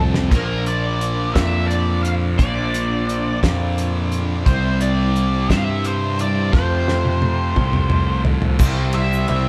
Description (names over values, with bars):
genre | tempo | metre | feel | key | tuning
psychedelic rock | 58 BPM (dotted quarters) | 6/8 | straight | C mixolydian | A4 = 440 Hz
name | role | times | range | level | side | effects
combo organ | sustained chords | 0.0-9.5 s | F3 to C5 | -32 LUFS | equal | none
thick fuzz guitar | riff | 0.0-9.5 s | F2 to C4 | -26 LUFS | equal | distortion, phaser
fuzz picked electric bass | bass | 0.0-9.5 s | Bb1 to G2 | -23 LUFS | equal | overdrive
damped 70s drum kit | drums | 0.1-9.4 s | crash cymbal, hi-hat, kick drum, ride cymbal, snare drum, splash cymbal, toms | -22 LUFS | equal | none
octave-fuzz lead guitar | melody | 0.3-9.5 s | Bb4 to F5 | -27 LUFS | equal | wah, distortion, tape echo
egg shaker | percussion | 8.6-9.3 s | none | -41 LUFS | equal | none
room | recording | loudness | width
moderate studio reverb, RT60 0.7 s | band playing live in one room | -19 LUFS | mono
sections
0.0-8.6 A section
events
drum fill 0.0-0.3, 6.5-8.6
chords
0.3 Bb; 4.5 C; 6.5 F; 8.6 C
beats
| 0.32 1.35 | 2.39 3.43 | 4.47 5.50 | 6.54 7.57 | 8.61